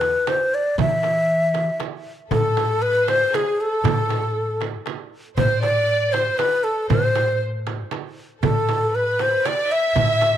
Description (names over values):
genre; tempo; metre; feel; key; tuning
Arabic maqam ensemble; 118 BPM; 3/4; straight; A maqam nahawand; A4 = 439 Hz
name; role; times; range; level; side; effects
breathy ney; melody; 0.0-10.4 s; G#4 to E5; -20 LUFS; left 1 dB; none
upright bass; bass; 0.0-10.4 s; E2 to E3; -26 LUFS; equal; none
darbuka; percussion; 0.0-10.3 s; none; -29 LUFS; left 7 dB; none
frame drum; percussion; 0.0-10.3 s; none; -26 LUFS; right 10 dB; none
dark symphonic violin section; second line; 2.3-10.4 s; G#4 to E5; -27 LUFS; equal; none
room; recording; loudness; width
light reverb, studio reverb; 1960s-style stereo with parts hard left and right; -18 LUFS; side -10 dB against mid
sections
0.0-2.3 A section; 2.3-10.4 B section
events
none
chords
none